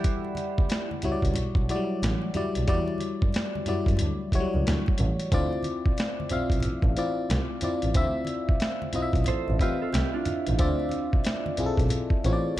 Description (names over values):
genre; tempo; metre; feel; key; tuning
R&B, neo-soul; 91 BPM; 4/4; swing 63% on 16ths; D dorian; A4 = 440 Hz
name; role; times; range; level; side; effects
mellow electric guitar; second line; 0.0-0.9, 9.3-11.1 s; D4 to C5; -34 LUFS; right 8 dB; lush chorus, tape echo
FM electric piano; accompaniment; 0.0-12.6 s; F#3 to F#5; -29 LUFS; left 2 dB; chorus
boom bap sampler-style drum kit; drums; 0.0-12.6 s; hi-hat, kick drum, snare drum; -27 LUFS; equal; none
congas; percussion; 0.0-12.1 s; none; -36 LUFS; right 2 dB; none
warm double bass; bass; 0.6-12.6 s; A1 to F#2; -29 LUFS; equal; none
room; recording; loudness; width
digital ambience; dark, warm production; -24 LUFS; side -14 dB against mid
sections
0.0-12.6 A section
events
none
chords
0.0 Em9; 5.3 Dm9